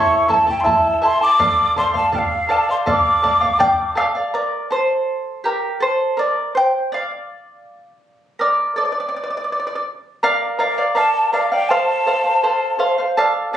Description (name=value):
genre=andean folk, Andean ensemble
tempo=82 BPM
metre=2/4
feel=straight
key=D minor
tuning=A4 = 440 Hz
part: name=breathy mellow quena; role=melody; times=0.0-3.9, 11.0-12.8 s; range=F5 to D6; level=-17 LUFS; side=left 1 dB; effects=plate reverb
part: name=charango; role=accompaniment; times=0.0-13.6 s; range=E4 to A5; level=-17 LUFS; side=right 1 dB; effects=none
part: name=bombo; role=percussion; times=0.3-4.1 s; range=none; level=-28 LUFS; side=equal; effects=none
room=moderate small room reverb, RT60 0.5 s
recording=recorded on a phone in the room, club reverb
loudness=-15 LUFS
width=side -11 dB against mid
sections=0.0-4.3 A section; 4.3-10.2 B section; 10.2-13.6 C section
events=charango solo 4.3-10.2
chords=0.0 A; 1.4 Dm; 4.3 Gmadd9; 5.8 Bbmaj13/A; 7.3 Dm; 10.2 Bb; 11.7 F